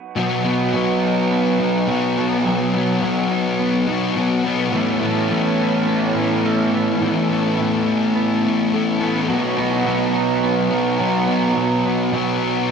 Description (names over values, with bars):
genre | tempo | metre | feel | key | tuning
rock | 105 BPM | 4/4 | straight | B mixolydian | A4 = 440 Hz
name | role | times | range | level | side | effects
twelve-string electric guitar | arpeggios | 0.2-12.7 s | E3 to A4 | -23 LUFS | right 5 dB | wide subtle chorus, analog delay
fuzz guitar | riff | 0.2-12.7 s | A2 to B3 | -19 LUFS | left 5 dB | distortion, analog chorus
raw garage guitar | riff | 0.2-12.7 s | A2 to A4 | -23 LUFS | right 7 dB | overdrive, reverse reverb
room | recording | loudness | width
wet huge ambient reverb, RT60 7.2 s | dreamy mix soaked in reverb | -16 LUFS | side -6 dB against mid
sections
0.2-12.7 A section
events
none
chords
0.2 B; 4.7 Aadd9; 9.3 B